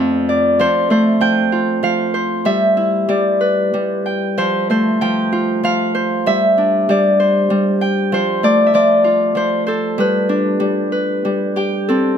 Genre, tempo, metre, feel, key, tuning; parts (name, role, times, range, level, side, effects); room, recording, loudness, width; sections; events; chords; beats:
children's music, lullaby; 96 BPM; 3/4; rubato; A4 = 440 Hz
Celtic harp; solo; 0.0-12.2 s; F2 to G5; -14 LUFS; equal
light reverb; close, detailed microphones; -14 LUFS; side -8 dB against mid
0.0-11.9 A section
0.0 Dm/F; 0.6 F; 2.4 Em/G; 3.1 G; 4.4 F; 6.3 Csus2/G; 8.1 F; 10.0 G
| 0.58 1.20 1.82 | 2.44 3.08 3.72 | 4.37 5.00 5.63 | 6.26 6.88 7.50 | 8.12 8.73 9.36 | 9.98 10.60 11.25 | 11.90